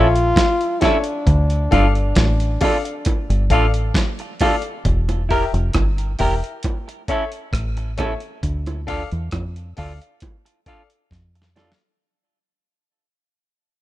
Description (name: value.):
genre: roots reggae.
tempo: 67 BPM.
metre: 4/4.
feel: straight.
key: D harmonic minor.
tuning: A4 = 438 Hz.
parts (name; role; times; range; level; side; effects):
clear trombone; melody; 0.0-3.9 s; D4 to F4; -23 LUFS; left 1 dB; tape echo.
semi-hollow electric guitar; accompaniment; 0.0-11.7 s; C#4 to Bb4; -25 LUFS; right 4 dB; none.
clear concert grand piano; stabs; 0.0-11.8 s; G4 to F5; -24 LUFS; left 8 dB; none.
deep dub fingered electric bass; bass; 0.0-11.7 s; E1 to F2; -19 LUFS; equal; none.
dusty soul sampler-style drum kit; drums; 0.2-12.0 s; hi-hat, kick drum, rim click, snare drum; -22 LUFS; equal; vintage 12-bit sampler grit.
bongos; percussion; 0.4-11.8 s; none; -26 LUFS; right 4 dB; none.
room: little or no reverb.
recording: rough home demo mix.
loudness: -17 LUFS.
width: side -15 dB against mid.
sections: 0.0-4.8 A section; 4.8-12.0 B section.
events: fade-out 4.8-12.0; drum fill 11.1-12.0.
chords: 0.0 A; 1.3 Dm; 4.8 Edim; 6.6 A; 8.4 Dm.